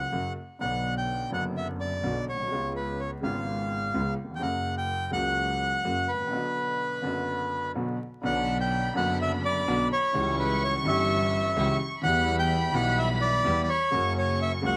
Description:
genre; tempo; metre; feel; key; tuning
tango; 126 BPM; 4/4; rubato; B harmonic minor; A4 = 435 Hz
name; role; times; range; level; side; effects
bandoneon; melody; 0.0-14.8 s; B4 to G5; -30 LUFS; equal; slapback echo
warm grand piano; accompaniment; 0.0-14.8 s; F#1 to A#4; -33 LUFS; equal; none
clear double bass; bass; 0.0-14.8 s; F#1 to E2; -35 LUFS; equal; none
rich studio string section; stabs; 8.2-14.8 s; F#3 to E4; -39 LUFS; equal; none
warm studio violin section; second line; 8.3-14.8 s; B5 to C#6; -36 LUFS; equal; none
room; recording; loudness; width
little or no reverb; recorded outdoors, with no room sound, vinyl crackle; -28 LUFS; mono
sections
0.0-8.2 A section; 8.2-14.8 A section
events
break 6.3-8.2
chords
0.0 F#; 0.6 Bm; 2.5 C#7; 4.4 F#; 6.3 Bm; 10.1 C#dim; 12.0 Em; 13.9 F#

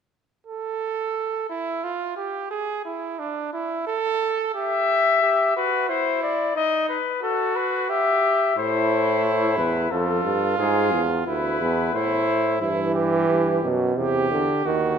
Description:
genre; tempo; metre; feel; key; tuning
classical, imitative canzona for brass ensemble; 89 BPM; 3/4; straight; unclear; A4 = 443 Hz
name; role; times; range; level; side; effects
clear trumpet; second line; 0.5-15.0 s; D4 to A4; -25 LUFS; right 4 dB; none
warm trumpet; melody; 4.5-12.6 s; G#4 to E5; -22 LUFS; left 6 dB; none
clear bass trombone; bass; 8.6-15.0 s; D2 to A2; -24 LUFS; right 1 dB; none
clear trombone; accompaniment; 12.6-15.0 s; B2 to E3; -22 LUFS; right 2 dB; none
room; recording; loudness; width
wet scoring stage reverb, RT60 1.6 s; none; -20 LUFS; side -7 dB against mid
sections
0.5-15.0 A section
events
none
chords
0.5 N.C.; 4.5 Em/G; 5.9 C/E; 6.6 B/D#; 7.9 Em/G; 8.6 Am; 9.9 F; 10.6 E; 11.9 Am; 12.6 Em/G; 14.0 C/E

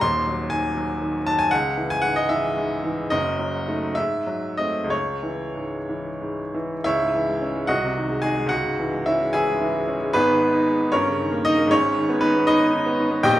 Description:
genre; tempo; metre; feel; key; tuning
classical, romantic character piece for solo piano; 60-82 BPM (dotted quarters); 6/8; rubato; C# minor; A4 = 440 Hz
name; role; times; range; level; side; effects
clear baby grand piano; solo; 0.0-13.4 s; D#1 to B#5; -20 LUFS; equal; none
room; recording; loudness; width
moderate recital hall reverb, RT60 1.3 s; minimal, uncompressed stereo recording; -20 LUFS; side -14 dB against mid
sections
0.0-6.9 A section; 6.9-13.4 B section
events
none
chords
0.0 G#7/D#; 1.5 C#m; 3.1 D#dim/F#; 4.0 G#7b9; 4.9 C#m; 7.7 G#7/B#; 8.5 C#m; 10.1 G#m; 10.9 D#7/G; 11.7 G#m

